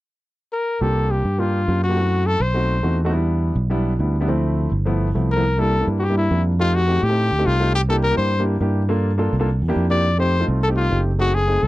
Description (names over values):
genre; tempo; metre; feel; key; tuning
Afro-Cuban jazz; 208 BPM; 4/4; straight; C mixolydian; A4 = 440 Hz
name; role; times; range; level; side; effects
bright trumpet; melody; 0.5-3.0, 5.3-11.7 s; E4 to D5; -21 LUFS; left 2 dB; none
warm concert grand piano; accompaniment; 0.8-11.6 s; F3 to A4; -24 LUFS; equal; none
fingered electric bass; bass; 0.8-11.7 s; F#1 to A2; -19 LUFS; right 1 dB; none
room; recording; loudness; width
light reverb; dark, warm production; -17 LUFS; side -17 dB against mid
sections
0.8-5.4 A section; 5.4-11.7 B section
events
none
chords
0.0 N.C.; 0.8 C7sus4; 2.0 F#m7b5; 2.5 B7b9; 3.1 Em7; 4.3 Dm9; 4.9 G13; 5.4 C7; 6.6 F7; 7.7 C7; 8.9 Gm7; 9.5 C7; 10.0 F7